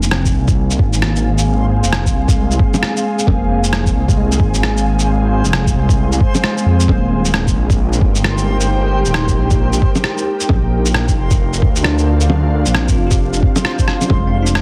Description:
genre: future garage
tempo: 133 BPM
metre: 4/4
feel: swing 61% on 16ths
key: F dorian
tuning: A4 = 442 Hz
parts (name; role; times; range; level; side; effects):
- bell-like tine electric piano; accompaniment; 0.0-14.6 s; Ab3 to G4; -25 LUFS; equal; sidechain pumping, tape echo
- ethereal airy pad; sustained chords; 0.0-14.6 s; Ab3 to Ab5; -25 LUFS; equal; ensemble chorus, built-in reverb, vintage 12-bit sampler grit, sidechain pumping
- swelling detuned saw bass; bass; 0.0-14.6 s; Eb1 to F2; -18 LUFS; equal; tube saturation, sidechain pumping
- electronic shaker, rim click and bongos; drums; 0.0-14.6 s; none; -22 LUFS; equal; soft clipping on snare
- backwards swelling texture; texture; 1.4-14.6 s; C5 to F5; -32 LUFS; equal; built-in reverb
- electronic kick drum; drums; 0.3-14.2 s; none; -17 LUFS; equal; none
room: light reverb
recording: dense, heavily limited modern master, vinyl crackle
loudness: -15 LUFS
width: mono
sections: 0.0-14.6 A section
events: none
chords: 0.0 Fm; 6.9 Eb; 10.5 Bb; 14.1 Fm

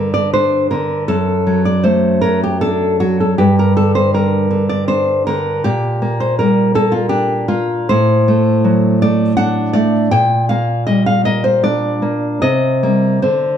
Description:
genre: romantic piece for solo classical guitar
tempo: 79 BPM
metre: 3/4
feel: uneven beats, rubato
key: G minor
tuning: A4 = 442 Hz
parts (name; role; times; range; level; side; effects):
- nylon-string guitar; solo; 0.0-13.6 s; F#2 to G5; -12 LUFS; equal; none
room: moderate recital hall reverb, RT60 1.3 s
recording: none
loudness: -12 LUFS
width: side -9 dB against mid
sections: 0.0-13.6 A section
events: none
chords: 0.0 G5; 1.1 D/F#; 3.4 G5; 5.6 Gm/Bb; 7.9 D7/A; 10.1 Gm/Bb; 12.4 Cm7

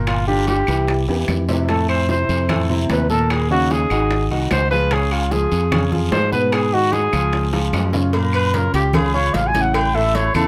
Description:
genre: Afro-Cuban jazz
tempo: 149 BPM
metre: 4/4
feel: straight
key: Db major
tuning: A4 = 441 Hz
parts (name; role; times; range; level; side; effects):
- warm grand piano; accompaniment; 0.0-10.5 s; A2 to Db5; -25 LUFS; equal; none
- modern bright fingered electric bass; bass; 0.0-10.5 s; G1 to Ab2; -23 LUFS; equal; none
- breathy trumpet; melody; 0.1-10.5 s; F4 to G#5; -22 LUFS; equal; none
- bongos and cowbell; percussion; 0.1-10.3 s; none; -31 LUFS; equal; none
- claves; percussion; 0.1-10.5 s; none; -32 LUFS; equal; none
- congas; percussion; 0.1-10.4 s; none; -29 LUFS; equal; none
- guiro; percussion; 0.1-10.5 s; none; -37 LUFS; equal; none
- timbales and agogo bells; percussion; 0.1-10.5 s; none; -31 LUFS; equal; none
room: moderate studio reverb, RT60 0.6 s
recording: none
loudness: -18 LUFS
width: mono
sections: 0.0-8.1 A section; 8.1-10.5 A section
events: trumpet solo 0.0-10.5; drum fill 1.1-1.7, 7.5-8.1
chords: 0.1 Gm7; 0.9 C; 1.7 Fmaj7; 3.3 Ebm7; 4.1 Ab7; 4.9 Db; 6.5 Abm7; 7.3 Db; 8.1 F#maj7; 9.7 A

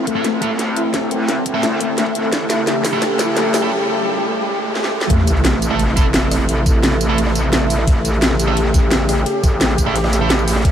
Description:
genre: dark technical drum and bass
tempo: 173 BPM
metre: 4/4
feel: straight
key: unclear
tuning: A4 = 445 Hz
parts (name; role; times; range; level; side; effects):
- sweeping resonant pad; sustained chords; 0.0-10.7 s; C3 to G4; -20 LUFS; right 1 dB; lush chorus, sidechain pumping
- metallic wobble bass; bass; 0.0-10.7 s; G1 to D2; -20 LUFS; equal; chorus, overdrive, sidechain pumping, high-pass filter
- riser and sub drop; sound effects; 0.0-6.5 s; none; -25 LUFS; equal; none
- felt-muted upright piano; arpeggios; 0.1-3.6 s; A3 to E4; -24 LUFS; left 4 dB; lush chorus, sidechain pumping, low-pass filter, tape echo
- drum and bass drum kit; drums; 0.1-10.7 s; hi-hat, rim click, snare drum, tambourine; -21 LUFS; equal; high-pass filter on hats, high-pass filter on snare, high-pass filter on perc, high-pass filter on room
- electronic kick drum; drums; 0.1-10.7 s; none; -16 LUFS; equal; high-pass filter on kick, high-pass filter on room
- sludgy distorted guitar; stabs; 0.2-10.3 s; A3 to A4; -25 LUFS; right 2 dB; overdrive, low-pass filter, tape echo
- crunchy breakbeat drum kit; drums; 5.1-10.7 s; hi-hat, snare drum; -33 LUFS; equal; none
room: moderate huge ambient reverb, RT60 7.8 s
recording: dreamy mix soaked in reverb, high-pass filter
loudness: -14 LUFS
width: side -9 dB against mid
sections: 0.0-5.1 A section; 5.1-10.7 B section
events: build-up 0.0-5.1; drum fill 0.0-3.7, 4.8-5.1; riser 0.0-5.1; break 3.7-5.1; drop 5.1-10.7; impact 5.1-6.5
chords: 0.0 Am; 2.3 A7; 5.1 Am; 7.9 A7

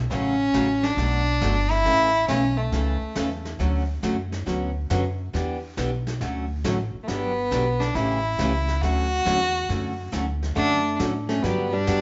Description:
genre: country, western swing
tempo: 138 BPM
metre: 4/4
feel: swing 67% on 8ths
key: D major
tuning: A4 = 439 Hz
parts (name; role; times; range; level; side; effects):
- upright bass; bass; 0.0-12.0 s; G1 to A2; -29 LUFS; equal; none
- clear fiddle; melody; 0.1-3.4, 7.0-12.0 s; A3 to F#4; -26 LUFS; equal; none
- picked steel-string acoustic guitar; accompaniment; 0.1-12.0 s; B2 to A4; -31 LUFS; equal; none
- vintage brush drum kit; drums; 0.1-12.0 s; brushed snare drum, hi-hat, snare drum; -38 LUFS; equal; none
- archtop guitar, miked and amplified; second line; 10.6-12.0 s; G3 to A3; -30 LUFS; equal; none
room: moderate large studio reverb, RT60 0.9 s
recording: band playing live in one room, nothing above 7.7 kHz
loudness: -24 LUFS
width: mono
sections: 0.0-12.0 A section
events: none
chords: 0.1 F#m/A; 1.0 Bm7; 1.9 A; 3.6 Dmaj7; 4.5 Bmadd9/D; 5.3 Em7; 6.2 Dmaj7; 7.1 Gmaj7; 8.0 A7; 8.8 Dmaj7; 11.4 Gmaj7

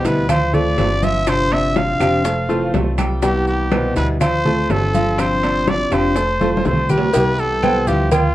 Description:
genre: latin, Cuban son and guajira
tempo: 123 BPM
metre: 4/4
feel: straight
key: C major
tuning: A4 = 435 Hz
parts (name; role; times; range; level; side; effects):
- growling trumpet; melody; 0.0-8.3 s; F4 to F5; -20 LUFS; equal; none
- nylon-string guitar; accompaniment; 0.0-8.2 s; C3 to G4; -22 LUFS; left 2 dB; none
- bright baby grand piano; arpeggios; 0.0-8.3 s; B2 to G5; -22 LUFS; right 1 dB; none
- upright bass; bass; 0.0-8.3 s; F1 to D2; -22 LUFS; equal; none
- bongos and cowbell; percussion; 0.0-8.3 s; none; -25 LUFS; left 2 dB; none
- maracas; percussion; 0.1-8.3 s; none; -38 LUFS; right 6 dB; none
- timbales and agogo bells; percussion; 0.1-8.3 s; none; -26 LUFS; right 5 dB; none
- claves; percussion; 0.3-8.3 s; none; -34 LUFS; left 5 dB; none
- congas; percussion; 0.3-8.3 s; none; -23 LUFS; equal; none
room: moderate small room reverb, RT60 0.6 s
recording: worn, warbling old tape, cassette tape, warbly pitch drift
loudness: -15 LUFS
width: side -14 dB against mid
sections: 0.0-7.1 A section; 7.1-8.3 B section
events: drum fill 6.4-7.1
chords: 0.3 Dm7; 1.3 G7sus4; 2.3 Fmaj7; 3.2 Cmaj7; 4.2 Dm7; 5.2 G7sus4; 6.2 Fmaj7; 7.1 Cmaj7

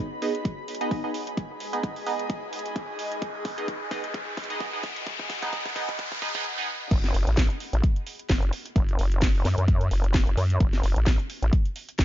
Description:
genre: bass house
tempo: 130 BPM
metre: 4/4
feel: swing 55% on 16ths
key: unclear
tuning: A4 = 440 Hz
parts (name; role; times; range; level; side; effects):
- riser; sound effects; 1.5-6.5 s; none; -35 LUFS; equal; none
- granular cloud pad; texture; 0.0-6.5 s; F#4 to B5; -36 LUFS; equal; built-in reverb, sidechain pumping
- band-passed chord stab; stabs; 0.2-6.7 s; B3 to F#5; -32 LUFS; right 2 dB; phaser, sidechain pumping, tape echo
- house drum kit; drums; 0.2-12.0 s; crash cymbal, hi-hat, snare drum; -33 LUFS; equal; none
- electronic kick drum; drums; 0.5-12.0 s; none; -24 LUFS; equal; none
- vowel-sweep wobble bass; bass; 6.9-12.0 s; F#1 to F#2; -23 LUFS; equal; chorus, tube saturation, sidechain pumping
room: little or no reverb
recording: dark, warm production, high-pass filter, nothing above 7.5 kHz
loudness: -24 LUFS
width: side -13 dB against mid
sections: 0.0-6.9 A section; 6.9-12.0 B section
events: build-up 0.0-6.9; drum fill 0.0-6.5; filter sweep on synth stab 0.0-6.9; filter sweep 0.0-6.9; riser 1.5-6.5; drop 6.9-12.0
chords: 0.0 G#m; 6.9 N.C.

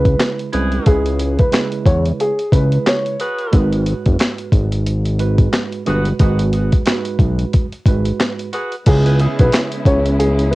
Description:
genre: hip hop, boom-bap hip-hop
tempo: 90 BPM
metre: 4/4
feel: swing 57% on 16ths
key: C# minor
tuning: A4 = 440 Hz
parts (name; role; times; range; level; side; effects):
- dark upright piano; melody; 0.0-3.2, 8.9-10.6 s; G#4 to C#5; -20 LUFS; equal; high-pass filter, low-pass filter, plate reverb, tape echo
- mellow tine electric piano; accompaniment; 0.0-10.3 s; G#2 to B4; -24 LUFS; right 6 dB; medium stereo tremolo, cassette tape, high-pass filter, low-pass filter, plate reverb
- fat analog bass; bass; 0.0-10.6 s; F#1 to E2; -16 LUFS; equal; none
- boom bap sampler-style drum kit; drums; 0.1-10.6 s; crash cymbal, handclaps, hi-hat, kick drum, snare drum; -15 LUFS; equal; none
- clear saxophone section; stabs; 0.5-9.8 s; C#4 to B4; -26 LUFS; equal; high-pass filter, low-pass filter, cassette tape, plate reverb, tape echo
- warm studio string section; sustained chords; 8.9-10.6 s; G#3 to E4; -25 LUFS; left 1 dB; high-pass filter, low-pass filter, cassette tape, plate reverb
room: light reverb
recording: home recording on cassette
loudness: -14 LUFS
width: side -20 dB against mid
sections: 0.0-8.9 A section; 8.9-10.6 B section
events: none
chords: 0.0 C#m7; 3.5 G#m7; 8.9 C#m7

